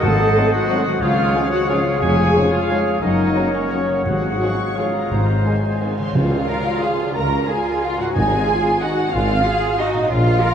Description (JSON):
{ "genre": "classical, orchestral ballroom waltz", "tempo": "162-198 BPM", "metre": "3/4", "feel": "rubato", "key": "Db major", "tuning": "A4 = 440 Hz", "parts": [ { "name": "clear clarinet", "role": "second line", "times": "0.0-5.9 s", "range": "Ab4 to C5", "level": "-28 LUFS", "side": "left 3 dB", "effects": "none" }, { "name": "small flute group", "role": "second line", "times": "0.0-6.0 s", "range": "Eb5 to Gb5", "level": "-30 LUFS", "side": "left 4 dB", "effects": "none" }, { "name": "warm oboe", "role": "second line", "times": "0.0-5.9 s", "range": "C5 to Eb5", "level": "-29 LUFS", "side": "right 3 dB", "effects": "none" }, { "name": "muted symphonic viola section", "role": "accompaniment", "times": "0.0-10.5 s", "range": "Db4 to Bb4", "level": "-24 LUFS", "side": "left 1 dB", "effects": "none" }, { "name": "concert harp", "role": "arpeggios", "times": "0.0-10.5 s", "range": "F2 to Eb6", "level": "-26 LUFS", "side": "left 2 dB", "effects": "none" }, { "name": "bright trumpet section", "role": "stabs", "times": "0.0-5.8 s", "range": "Db5 to A5", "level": "-26 LUFS", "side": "right 2 dB", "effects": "none" }, { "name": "muted symphonic cello section", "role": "bass", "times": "0.0-10.5 s", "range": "Db2 to Bb4", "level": "-24 LUFS", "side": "equal", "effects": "none" }, { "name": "muted symphonic double bass section", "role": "bass", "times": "0.0-10.4 s", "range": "F1 to Db2", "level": "-25 LUFS", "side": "equal", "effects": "none" }, { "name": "timpani", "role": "percussion", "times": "0.0-0.5, 4.1-8.6 s", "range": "Ab2 to Db3", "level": "-26 LUFS", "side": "right 1 dB", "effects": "none" }, { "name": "muted symphonic violin section", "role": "melody", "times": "0.4-10.5 s", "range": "Eb5 to Db6", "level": "-24 LUFS", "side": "right 1 dB", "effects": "none" }, { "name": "muted symphonic violin section", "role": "second line", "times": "0.4-10.5 s", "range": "Eb4 to Eb5", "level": "-28 LUFS", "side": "equal", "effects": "none" }, { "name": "bright trombone section", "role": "sustained chords", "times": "0.4-5.9 s", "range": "Gb2 to Gb3", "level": "-31 LUFS", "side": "right 1 dB", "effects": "none" }, { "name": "mellow French horn section", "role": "sustained chords", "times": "0.4-5.9 s", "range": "Ab3 to Db4", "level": "-30 LUFS", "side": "equal", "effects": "none" }, { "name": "cymbal swell and tam-tam", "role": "percussion", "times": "4.1-7.5 s", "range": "none", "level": "-31 LUFS", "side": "right 3 dB", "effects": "none" }, { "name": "mellow tuba", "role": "bass", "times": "6.2-10.4 s", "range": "Ab1 to Db2", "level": "-24 LUFS", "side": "equal", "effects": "none" } ], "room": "wet cathedral reverb, RT60 5.3 s", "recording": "in a vast, echoing space", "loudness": "-16 LUFS", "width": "side -8 dB against mid", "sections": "0.0-6.2 A section; 6.2-10.5 B section", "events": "band accent 6.2-6.5", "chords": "0.0 Ab7b9; 1.0 Db; 2.0 Db/F; 3.0 Gb; 4.1 Db/Ab; 5.1 Ab; 6.2 Db; 8.2 Ab" }